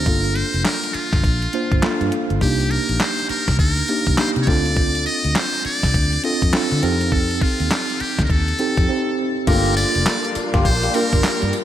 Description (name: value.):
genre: R&B, new jack swing.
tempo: 102 BPM.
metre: 4/4.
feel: swing 62% on 16ths.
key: G minor.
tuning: A4 = 440 Hz.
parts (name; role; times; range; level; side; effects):
trumpet with metal mute; melody; 0.0-11.5 s; F4 to Eb5; -22 LUFS; equal; none.
tine electric piano; accompaniment; 0.0-11.6 s; A3 to C5; -23 LUFS; right 2 dB; medium stereo tremolo, slapback echo.
vintage muted fingered electric bass; bass; 0.0-11.5 s; F1 to D3; -22 LUFS; equal; none.
clean 12-bit digital drum machine; drums; 0.1-11.6 s; crash cymbal, handclaps, hi-hat, kick drum, snare drum, tambourine; -21 LUFS; equal; none.
warm studio string section; sustained chords; 9.5-11.6 s; G3 to F4; -26 LUFS; left 2 dB; none.
tonewheel organ; stabs; 9.5-11.0 s; Bb3 to G4; -25 LUFS; left 4 dB; slow rotary speaker, slapback echo.
room: moderate lush hall reverb, RT60 2.6 s.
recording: big arena sound.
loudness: -16 LUFS.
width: side -11 dB against mid.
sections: 0.0-9.5 A section; 9.5-11.6 B section.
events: break 8.9-9.5.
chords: 0.1 Gm7; 2.4 Cm7; 4.5 Dm7; 6.8 F7; 9.5 Gm7.